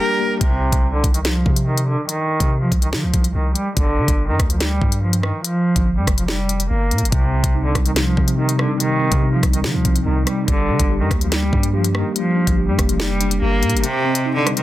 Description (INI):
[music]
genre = hip hop, drill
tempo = 143 BPM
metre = 4/4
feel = half-time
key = C minor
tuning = A4 = 440 Hz
[part]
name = bright cello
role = melody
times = 0.0-14.6 s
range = C3 to Bb4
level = -21 LUFS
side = right 1 dB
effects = low-pass filter, digital delay
[part]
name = mellow tine electric piano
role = accompaniment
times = 0.0-0.4, 7.1-14.6 s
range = C3 to G4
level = -22 LUFS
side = left 1 dB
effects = fast stereo tremolo, low-pass filter
[part]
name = hollow soft pad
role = sustained chords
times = 0.0-0.4, 13.8-14.6 s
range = G4 to C6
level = -31 LUFS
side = left 1 dB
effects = ensemble chorus
[part]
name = long sustained 808-style bass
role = bass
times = 0.4-13.8 s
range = F1 to Eb3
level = -20 LUFS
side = equal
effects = none
[part]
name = drill drum kit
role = drums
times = 0.4-14.6 s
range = hi-hat, kick drum, rim click, snare drum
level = -20 LUFS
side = equal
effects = none
[sound]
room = little or no reverb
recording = dense, heavily limited modern master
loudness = -16 LUFS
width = side -15 dB against mid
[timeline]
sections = 0.4-14.6 A section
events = break 0.0-0.4; filter sweep 0.4-13.8; kick muted 13.8-14.6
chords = 0.4 Cm; 3.8 G5; 7.1 Cm; 10.5 Gm; 13.8 Cm